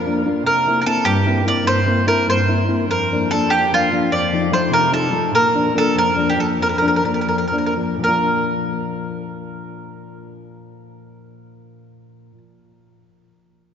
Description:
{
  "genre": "italian folk, Italian serenade",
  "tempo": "76-99 BPM (dotted quarters)",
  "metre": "6/8",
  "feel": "straight",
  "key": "Bb major",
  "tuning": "A4 = 438 Hz",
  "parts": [
    { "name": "nylon-string guitar", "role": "accompaniment", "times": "0.0-12.4 s", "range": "F2 to F4", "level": "-20 LUFS", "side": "left 2 dB", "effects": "none" },
    { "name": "mandolin", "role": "melody", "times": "0.5-12.4 s", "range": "F4 to D5", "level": "-18 LUFS", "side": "right 1 dB", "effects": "none" }
  ],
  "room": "wet cathedral reverb, RT60 4.4 s",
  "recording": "recorded in a church or concert hall, nothing above 7.5 kHz",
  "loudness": "-15 LUFS",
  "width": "side -8 dB against mid",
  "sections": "0.0-8.0 A section; 8.0-11.2 B section",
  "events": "slowing down 5.3-8.0",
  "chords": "0.5 C7; 2.9 Bb/F; 4.1 F7; 5.3 Bb"
}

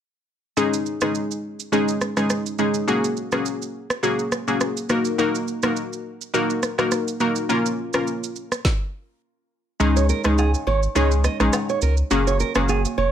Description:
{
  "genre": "afrobeats",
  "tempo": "104 BPM",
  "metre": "4/4",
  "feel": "swing 55% on 16ths",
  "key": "Db major",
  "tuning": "A4 = 440 Hz",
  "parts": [
    { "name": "glassy wavetable pluck", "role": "accompaniment", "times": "0.6-12.7 s", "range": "Ab3 to Bb4", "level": "-22 LUFS", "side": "left 1 dB", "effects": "chorus" },
    { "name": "afro-pop drum kit", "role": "drums", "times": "0.6-13.0 s", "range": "kick drum, rim click, shaker, snare drum", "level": "-25 LUFS", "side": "right 2 dB", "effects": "none" },
    { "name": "warm sub bass", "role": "bass", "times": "9.8-13.1 s", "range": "F1 to Db2", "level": "-20 LUFS", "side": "equal", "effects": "none" },
    { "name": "agogo bells and woodblock", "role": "percussion", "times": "9.8-13.1 s", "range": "none", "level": "-32 LUFS", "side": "left 6 dB", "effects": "none" },
    { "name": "nylon-string guitar", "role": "riff", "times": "10.0-13.1 s", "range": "Ab4 to Eb5", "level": "-25 LUFS", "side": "right 8 dB", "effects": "digital delay" }
  ],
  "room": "light reverb",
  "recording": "none",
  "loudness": "-20 LUFS",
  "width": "side -9 dB against mid",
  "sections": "0.6-9.8 A section; 9.8-13.1 B section",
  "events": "stop 8.6-9.8; kick muted 9.8-13.1",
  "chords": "0.6 Dbsus2; 2.9 Gbadd9; 4.9 Ebm; 7.5 Bbm; 9.8 Dbsus2; 12.1 Gbadd9"
}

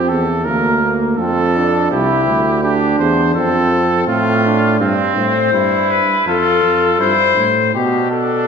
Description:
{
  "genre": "classical, imitative canzona for brass ensemble",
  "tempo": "82 BPM",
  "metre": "4/4",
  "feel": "straight",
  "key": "F major",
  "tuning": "A4 = 441 Hz",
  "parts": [
    { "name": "warm trumpet", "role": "second line", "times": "0.0-8.5 s", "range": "C4 to C5", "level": "-18 LUFS", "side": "right 3 dB", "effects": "none" },
    { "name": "warm trombone", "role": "accompaniment", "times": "0.0-4.8 s", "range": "Bb3 to E4", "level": "-19 LUFS", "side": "right 1 dB", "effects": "none" },
    { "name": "warm bass trombone", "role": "bass", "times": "0.0-8.5 s", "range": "C2 to B2", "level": "-17 LUFS", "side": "right 2 dB", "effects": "none" },
    { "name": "mellow trumpet", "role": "melody", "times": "5.2-8.5 s", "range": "G4 to C5", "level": "-15 LUFS", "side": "left 8 dB", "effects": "none" }
  ],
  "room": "wet recital hall reverb, RT60 1.4 s",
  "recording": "minimal, uncompressed stereo recording",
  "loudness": "-12 LUFS",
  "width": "side -6 dB against mid",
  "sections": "0.0-8.5 A section",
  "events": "none",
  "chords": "0.5 Bb/D; 1.9 C; 3.4 F; 4.8 C/G; 6.3 F; 7.7 G/B"
}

